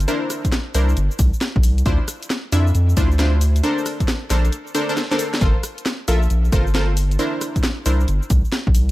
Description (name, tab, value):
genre	UK garage, two-step garage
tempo	135 BPM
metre	4/4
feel	swing 66% on 16ths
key	unclear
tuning	A4 = 440 Hz
part	saturated sub bass	bass	0.0-8.9 s	G1 to F2	-17 LUFS	equal	none
part	garage drum kit	drums	0.0-8.9 s	cabasa, hi-hat, rim click, snare drum	-26 LUFS	equal	none
part	punchy chord stab	stabs	0.1-8.0 s	D4 to E5	-23 LUFS	equal	chorus, tape echo
part	electronic kick drum	drums	0.4-8.7 s	none	-18 LUFS	equal	none
room	digital ambience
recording	dark, warm production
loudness	-17 LUFS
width	side -17 dB against mid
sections	0.0-8.9 A section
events	drum fill 5.0-5.4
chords	0.1 C9; 1.9 Dm9; 3.6 Bbmaj9; 5.4 Gm11; 7.2 C9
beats	| 0.08 0.53 0.97 1.41 | 1.86 2.30 2.75 3.19 | 3.64 4.08 4.53 4.97 | 5.41 5.86 6.30 6.75 | 7.19 7.64 8.08 8.53